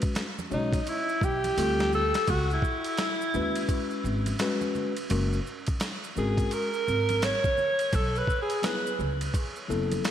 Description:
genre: hip hop, jazz-hop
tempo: 85 BPM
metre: 4/4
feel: swing 62% on 16ths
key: C# minor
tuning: A4 = 440 Hz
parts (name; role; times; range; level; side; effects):
- mellow tine electric piano; accompaniment; 0.0-10.1 s; F#3 to C#5; -32 LUFS; left 4 dB; none
- boom bap sampler-style drum kit; drums; 0.0-10.1 s; hi-hat, kick drum, ride cymbal, snare drum; -32 LUFS; equal; none
- maracas and congas; percussion; 0.0-10.1 s; none; -42 LUFS; right 4 dB; none
- breathy alto saxophone; melody; 0.5-9.0 s; D#4 to C#5; -28 LUFS; right 1 dB; diffuse ambient delay
- upright bass; bass; 0.5-10.0 s; F#1 to D#2; -30 LUFS; equal; none
room: wet lush hall reverb, RT60 1.9 s, small room ambience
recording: dreamy mix soaked in reverb, vinyl crackle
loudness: -25 LUFS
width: side -10 dB against mid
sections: 0.0-10.1 A section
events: alto saxophone solo 0.0-10.1; drum fill 1.6-2.3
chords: 0.0 Amaj9 (rootless); 1.6 Dm7; 2.3 C#m7; 5.1 F#add9; 7.9 B13sus4

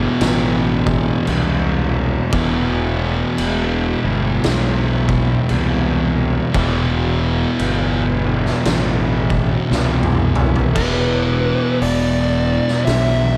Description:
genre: stoner and doom metal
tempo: 57 BPM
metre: 4/4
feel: swing 62% on 8ths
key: unclear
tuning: A4 = 438 Hz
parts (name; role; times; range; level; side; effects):
- string machine, violas; sustained chords; 0.0-13.4 s; E3 to F#5; -34 LUFS; equal; none
- thick fuzz guitar; riff; 0.0-13.4 s; E2 to E3; -23 LUFS; equal; distortion
- thick fuzz guitar; riff; 0.0-13.4 s; E2 to E3; -24 LUFS; equal; distortion
- fuzz fingered electric bass; bass; 0.0-13.4 s; E1 to C2; -23 LUFS; equal; overdrive
- oversized low-tuned drum kit; drums; 0.2-13.2 s; crash cymbal, hi-hat, kick drum, snare drum, toms; -25 LUFS; equal; none
- fuzz lead guitar; melody; 10.8-13.4 s; B4 to E5; -23 LUFS; equal; distortion, analog delay
room: light reverb, small room reverb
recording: none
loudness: -18 LUFS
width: mono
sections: 0.0-10.8 A section; 10.8-13.4 B section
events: drum fill 9.7-10.8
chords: 0.0 E5

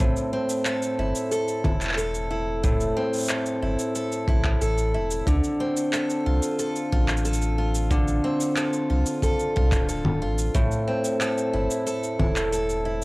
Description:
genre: folktronica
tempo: 91 BPM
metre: 4/4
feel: straight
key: A minor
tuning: A4 = 440 Hz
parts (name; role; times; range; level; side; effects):
- picked steel-string acoustic guitar; arpeggios; 0.0-13.0 s; A2 to A4; -24 LUFS; equal; cassette tape, tape echo
- warm sub bass; bass; 0.0-13.0 s; D1 to D2; -26 LUFS; equal; none
- electronic shaker, handclaps and congas; drums; 0.0-12.8 s; none; -29 LUFS; equal; cassette tape
- kick drum; drums; 0.0-12.3 s; none; -24 LUFS; equal; cassette tape
room: light reverb, small room ambience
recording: home recording on cassette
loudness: -22 LUFS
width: side -23 dB against mid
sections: 0.0-13.0 A section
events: none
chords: 0.0 Am; 5.3 Dm7; 10.5 Am

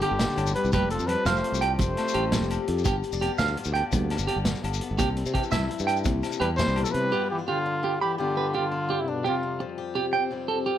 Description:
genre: highlife guitar band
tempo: 113 BPM (dotted quarters)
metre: 12/8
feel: straight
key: G mixolydian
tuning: A4 = 441 Hz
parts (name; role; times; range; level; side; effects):
- breathy trumpet; melody; 0.0-2.6, 6.4-9.6 s; D4 to C5; -28 LUFS; equal; none
- trombone with metal mute; second line; 0.0-2.7, 6.4-9.6 s; B2 to A3; -33 LUFS; left 4 dB; none
- picked swing-style acoustic guitar; accompaniment; 0.0-10.8 s; F2 to G4; -33 LUFS; left 7 dB; none
- clean electric guitar; arpeggios; 0.0-10.8 s; G4 to B5; -28 LUFS; right 7 dB; slapback echo
- vintage drum kit; drums; 0.0-7.0 s; hi-hat, kick drum, snare drum; -32 LUFS; equal; none
- agogo bells; percussion; 0.0-6.9 s; none; -37 LUFS; left 8 dB; none
- congas; percussion; 0.0-6.7 s; none; -33 LUFS; right 4 dB; none
- modern bright fingered electric bass; bass; 0.1-7.1 s; F1 to C3; -29 LUFS; equal; none
- shekere; percussion; 0.2-6.9 s; none; -35 LUFS; left 5 dB; none
room: light reverb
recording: none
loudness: -23 LUFS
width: side -10 dB against mid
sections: 0.0-7.1 A section; 7.1-10.8 B section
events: none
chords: 0.0 G7; 0.7 Fadd9; 2.9 G7; 5.0 C; 7.1 G7; 9.2 Fsus2

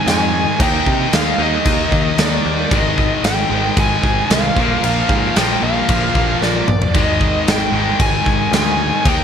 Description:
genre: hard rock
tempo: 114 BPM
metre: 4/4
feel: straight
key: unclear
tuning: A4 = 439 Hz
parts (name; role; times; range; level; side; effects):
- bluesy overdriven lead guitar; melody; 0.0-9.2 s; D5 to Ab5; -20 LUFS; equal; distortion
- distorted electric guitar; riff; 0.0-9.2 s; Ab2 to Eb4; -21 LUFS; left 11 dB; distortion
- distorted electric guitar; riff; 0.0-9.2 s; Ab2 to Eb4; -25 LUFS; equal; none
- high-gain distorted guitar; riff; 0.0-9.2 s; Ab2 to Eb4; -23 LUFS; right 11 dB; distortion
- picked electric bass; bass; 0.1-9.2 s; Ab1 to C3; -22 LUFS; equal; none
- big rock drum kit; drums; 0.1-9.2 s; crash cymbal, kick drum, snare drum, toms; -18 LUFS; equal; none
room: moderate plate reverb, RT60 2.7 s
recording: bright 1980s-style digital production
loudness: -13 LUFS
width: side -8 dB against mid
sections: 0.0-9.2 A section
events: drum fill 6.4-6.9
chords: 0.0 Ab5; 0.6 Eb; 2.7 Ab5; 4.6 Bb; 6.9 Ab5

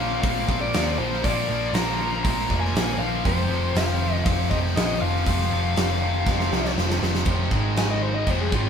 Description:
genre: hard rock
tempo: 119 BPM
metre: 4/4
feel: straight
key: unclear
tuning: A4 = 440 Hz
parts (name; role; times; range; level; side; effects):
- biting lead guitar; melody; 0.0-8.7 s; F4 to Bb5; -28 LUFS; left 4 dB; overdrive
- tonewheel organ; sustained chords; 0.0-8.7 s; F3 to C5; -39 LUFS; equal; none
- cranked stack guitar; riff; 0.0-8.7 s; F2 to Bb3; -30 LUFS; right 5 dB; overdrive, spring reverb
- scooped high-gain guitar; riff; 0.0-8.7 s; F2 to Bb3; -31 LUFS; left 9 dB; distortion
- tight distorted guitar; riff; 0.0-8.7 s; F2 to Bb3; -32 LUFS; equal; distortion
- hollow-body short-scale picked electric bass; bass; 0.0-8.7 s; F1 to Eb2; -26 LUFS; equal; none
- big rock drum kit; drums; 0.2-8.6 s; crash cymbal, hi-hat, kick drum, snare drum; -26 LUFS; equal; none
room: light reverb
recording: band playing live in one room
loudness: -20 LUFS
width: side -7 dB against mid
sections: 0.0-7.3 A section; 7.3-8.7 B section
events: drum fill 6.3-7.3; lead electric guitar solo 7.3-8.7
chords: 0.0 Bb; 3.2 F5; 7.5 Ab5

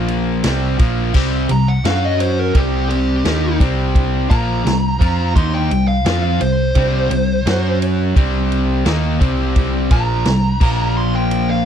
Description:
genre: classic rock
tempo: 86 BPM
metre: 4/4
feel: straight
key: unclear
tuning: A4 = 440 Hz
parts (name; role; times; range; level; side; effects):
- cranked stack guitar; riff; 0.0-11.7 s; Bb2 to F#4; -21 LUFS; left 13 dB; overdrive
- crunchy overdriven guitar; riff; 0.0-11.7 s; Bb2 to F#4; -21 LUFS; right 12 dB; none
- hollow-body short-scale picked electric bass; bass; 0.0-11.6 s; Bb1 to F#2; -19 LUFS; equal; none
- vintage drum kit; drums; 0.1-11.5 s; crash cymbal, kick drum, ride cymbal, snare drum; -18 LUFS; equal; none
- fuzz lead guitar; melody; 1.5-11.7 s; G4 to C6; -21 LUFS; equal; distortion, slapback echo
room: little or no reverb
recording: dry, close 1970s-style studio recording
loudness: -14 LUFS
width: side -9 dB against mid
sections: 0.0-1.1 A section; 1.1-11.7 B section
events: lead electric guitar solo 1.1-11.7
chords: 0.4 C5; 1.8 F#5; 2.5 Cm; 7.5 F#5; 8.2 Cm; 10.6 Bb5

